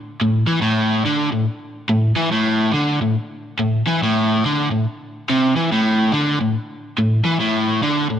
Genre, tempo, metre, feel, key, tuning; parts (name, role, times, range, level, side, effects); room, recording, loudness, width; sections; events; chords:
rock; 142 BPM; 4/4; swing 63% on 8ths; A minor; A4 = 440 Hz
overdriven electric guitar; solo; 0.2-8.2 s; A2 to E3; -17 LUFS; equal
moderate plate reverb, RT60 2.5 s; -16 LUFS; side -9 dB against mid
0.0-8.2 A section